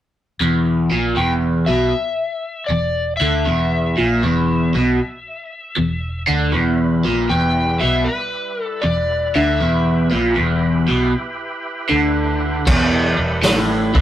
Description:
blues rock power trio and southern rock; 78 BPM; 4/4; swing 67% on 8ths; E minor; A4 = 442 Hz
overdriven electric guitar; riff; 0.4-14.0 s; E2 to D3; -17 LUFS; equal; phaser
vintage muted fingered electric bass; bass; 0.4-14.0 s; E1 to D2; -23 LUFS; equal
overdriven slide guitar; melody; 1.2-10.1 s; B4 to G5; -22 LUFS; left 3 dB
overdriven tonewheel organ; sustained chords; 6.5-14.0 s; G3 to B4; -28 LUFS; right 2 dB; slow rotary speaker
vintage drum kit; drums; 12.7-14.0 s; crash cymbal, hi-hat, kick drum, snare drum; -16 LUFS; equal
moderate studio reverb, RT60 0.6 s; rough rehearsal-room recording; -16 LUFS; side -12 dB against mid
0.4-12.7 A section; 12.7-14.0 B section
0.4 Em

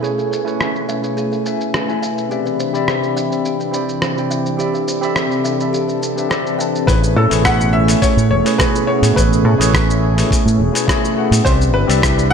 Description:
sunset chillout; 105 BPM; 4/4; straight; A4 = 442 Hz
tine electric piano; accompaniment; 0.0-12.3 s; A3 to B5; -20 LUFS; moving between left 7 dB and right 7 dB; medium tremolo, auto-pan, analog delay
lush unison pad; sustained chords; 0.0-12.3 s; B2 to B5; -21 LUFS; equal; chorus
buzzing kalimba; arpeggios; 0.0-6.7 s; G4 to E5; -25 LUFS; right 2 dB; low-pass filter, analog delay
dusty soul sampler-style drum kit; drums; 0.0-12.3 s; hi-hat, rim click, shaker; -22 LUFS; equal; low-pass filter on hats, low-pass filter on perc, low-pass filter on snare, low-pass filter on room
bright baby grand piano; melody; 6.9-12.3 s; A4 to F#5; -20 LUFS; left 2 dB; vintage 12-bit sampler grit, ping-pong delay
fingered electric bass; bass; 6.9-12.3 s; E1 to A2; -15 LUFS; equal
electronic kick drum; drums; 6.9-12.1 s; -18 LUFS; equal
moderate plate reverb, RT60 2.6 s; dreamy mix soaked in reverb; -14 LUFS; side -6 dB against mid
0.0-6.9 A section; 6.9-12.3 B section
0.0 Amaj9; 2.3 Cmaj9; 6.9 Amaj9; 11.5 Cmaj9

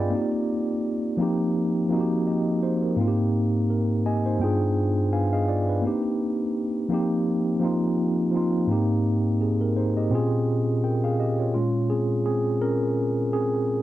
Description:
hip hop; 84 BPM; 4/4; swing 56% on 16ths; Bb dorian; A4 = 440 Hz
mellow tine electric piano; solo; 0.0-13.8 s; G2 to B5; -22 LUFS; equal; medium stereo tremolo, cassette tape, low-pass filter
moderate studio reverb, RT60 0.6 s; dark, warm production; -22 LUFS; side -14 dB against mid
0.0-11.5 A section; 11.5-13.8 B section
tine electric piano fill 3.7-5.8; tine electric piano solo 11.5-13.8
0.1 Cm7; 1.2 F9sus4; 3.0 Abmaj9; 4.4 G7b9; 5.8 Cm7; 6.9 F9sus4; 8.7 Abmaj9; 10.1 Bbm9

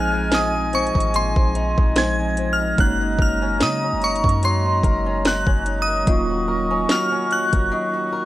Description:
contemporary R&B; 73 BPM; 4/4; swing 54% on 16ths; Eb dorian; A4 = 444 Hz
glassy synth bell; melody; 0.0-8.3 s; C6 to Ab6; -23 LUFS; equal; chorus, phaser
tine electric piano; accompaniment; 0.0-8.3 s; F3 to F4; -27 LUFS; equal; medium stereo tremolo
warm woodwind section; sustained chords; 0.0-8.3 s; Gb3 to Db6; -26 LUFS; equal
fingerpicked swing-style acoustic guitar; arpeggios; 0.0-8.3 s; Bb2 to Bb4; -28 LUFS; left 2 dB
soft 808-style bass; bass; 0.0-7.7 s; Eb1 to Db3; -25 LUFS; equal
trap drum kit; drums; 0.3-7.7 s; hi-hat, kick drum, snare drum; -20 LUFS; equal; overdrive, vintage 12-bit sampler grit
small celesta; texture; 2.0-7.4 s; C6 to Eb6; -36 LUFS; right 1 dB
little or no reverb; dry, gritty hardware recording; -17 LUFS; side -15 dB against mid
0.0-8.3 A section
break 7.7-8.3
0.0 Bb9sus4; 2.8 Gb6; 6.1 Ebm7

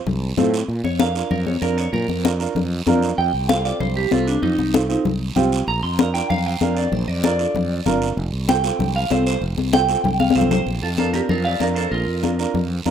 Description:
latin, cumbia; 192 BPM; 4/4; straight; Bb major; A4 = 439 Hz
fretless electric bass; bass; 0.1-12.9 s; F1 to Bb2; -23 LUFS; right 1 dB
congas; percussion; 0.1-12.9 s; -21 LUFS; left 6 dB
guiro; percussion; 0.1-12.9 s; -34 LUFS; right 8 dB
dark upright piano; accompaniment; 0.4-12.9 s; C4 to Bb4; -24 LUFS; right 7 dB
clean electric guitar; melody; 0.8-12.5 s; D4 to C6; -23 LUFS; right 3 dB; spring reverb, slapback echo
moderate studio reverb, RT60 0.6 s; rough home demo mix; -18 LUFS; side -8 dB against mid
0.7-10.7 A section; 10.7-12.9 B section
clean electric guitar solo 0.7-10.7; drum fill 10.2-10.7
0.0 F; 0.7 Bb; 3.2 F7; 5.7 Bb; 8.2 F; 10.7 Bb

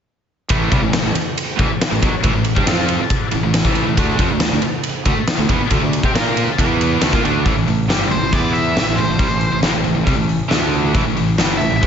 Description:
hard rock; 138 BPM; 4/4; straight; A minor; A4 = 440 Hz
cranked stack guitar; riff; 0.5-11.9 s; G2 to Bb4; -21 LUFS; right 8 dB; overdrive
scooped high-gain guitar; riff; 0.5-11.9 s; G2 to Bb4; -22 LUFS; left 8 dB; distortion
fuzz fingered electric bass; bass; 0.5-11.9 s; G1 to C3; -22 LUFS; equal; overdrive
huge arena drum kit; drums; 0.5-11.9 s; hi-hat, kick drum, ride cymbal, snare drum; -18 LUFS; equal
nasal lead guitar with a parked wah; melody; 8.1-11.9 s; C5 to E5; -21 LUFS; equal; overdrive, slapback echo
moderate lush hall reverb, RT60 1.8 s, small room ambience; big arena sound, nothing above 7.7 kHz; -14 LUFS; side -8 dB against mid
0.5-7.5 A section; 7.5-11.9 B section
0.5 Am; 4.0 D5; 6.6 E5; 7.0 D5; 7.5 A5; 8.3 E5; 8.8 Am; 10.5 D5; 11.0 A5

